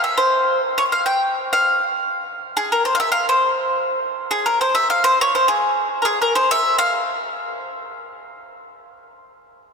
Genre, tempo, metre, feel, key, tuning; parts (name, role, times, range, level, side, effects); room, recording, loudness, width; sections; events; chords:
italian folk; 137 BPM (dotted quarters); 6/8; straight; F harmonic minor; A4 = 441 Hz
bowl-back mandolin; solo; 0.0-7.3 s; Ab4 to G5; -17 LUFS; equal
wet cathedral reverb, RT60 5.8 s; recorded in a church or concert hall; -16 LUFS; side -5 dB against mid
0.0-4.2 A section; 4.2-7.6 B section